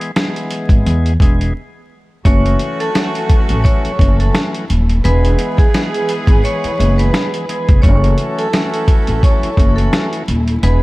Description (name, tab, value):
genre	hip hop, boom-bap hip-hop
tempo	86 BPM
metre	4/4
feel	swing 56% on 16ths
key	F# minor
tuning	A4 = 440 Hz
part	bright tonewheel organ	accompaniment	0.0-10.8 s	E3 to G#4	-23 LUFS	left 1 dB	slow rotary speaker, cassette tape
part	dusty soul sampler-style drum kit	drums	0.0-10.8 s	hi-hat, kick drum, snare drum	-14 LUFS	equal	vintage 12-bit sampler grit
part	upright bass	bass	0.7-10.8 s	D#1 to E2	-14 LUFS	equal	none
part	warm studio string section	sustained chords	2.2-10.8 s	E3 to B4	-28 LUFS	left 1 dB	none
part	vibraphone with medium hard mallets	melody	2.3-10.8 s	G#4 to C#6	-21 LUFS	equal	slapback echo
part	warm horn section	stabs	2.3-10.8 s	A3 to A4	-27 LUFS	right 7 dB	slapback echo
room	small room ambience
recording	vinyl crackle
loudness	-12 LUFS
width	side -20 dB against mid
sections	0.0-2.3 A section; 2.3-10.8 B section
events	break 1.6-2.3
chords	0.0 E; 2.3 F#m7; 5.0 E; 7.8 F#m7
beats	0.16 0.86 1.55 | 2.25 2.95 3.65 4.34 | 5.04 5.74 6.44 7.13 | 7.83 8.53 9.23 9.93 | 10.62